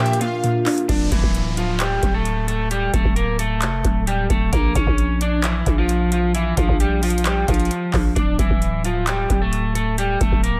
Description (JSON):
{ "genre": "hip hop, trap", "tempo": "132 BPM", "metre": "4/4", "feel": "half-time", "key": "D harmonic minor", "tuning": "A4 = 443 Hz", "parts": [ { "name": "electric guitar at the edge of break-up", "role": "melody", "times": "0.0-10.6 s", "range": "E3 to G5", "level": "-25 LUFS", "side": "equal", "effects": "low-pass filter, tape echo" }, { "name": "warbly dusty pluck", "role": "accompaniment", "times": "0.0-0.9 s", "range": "Bb2 to D4", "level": "-26 LUFS", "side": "equal", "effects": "chorus, low-pass filter, tape echo" }, { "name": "glass harmonica", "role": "sustained chords", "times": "0.0-0.9 s", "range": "Bb3 to Bb4", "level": "-33 LUFS", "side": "equal", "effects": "none" }, { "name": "booming analog drum machine", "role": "drums", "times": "0.1-10.5 s", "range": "handclaps, hi-hat, kick drum", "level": "-24 LUFS", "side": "equal", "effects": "tape echo" }, { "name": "growling 808-style bass", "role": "bass", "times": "0.9-10.6 s", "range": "D1 to Bb1", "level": "-24 LUFS", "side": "equal", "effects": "none" }, { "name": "downlifter", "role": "sound effects", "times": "0.9-4.5 s", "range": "none", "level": "-37 LUFS", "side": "equal", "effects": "none" } ], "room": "little or no reverb", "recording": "echo-heavy mix", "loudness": "-20 LUFS", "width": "mono", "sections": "0.9-10.6 A section", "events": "break 0.0-0.9", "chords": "0.0 Bb; 0.9 Dsus2; 4.5 Bb5; 8.2 Dsus2", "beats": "0.44 | 0.89 1.35 1.80 2.25 | 2.71 3.16 3.62 4.07 | 4.53 4.98 5.44 5.89 | 6.35 6.80 7.25 7.71 | 8.16 8.62 9.07 9.53 | 9.98 10.44" }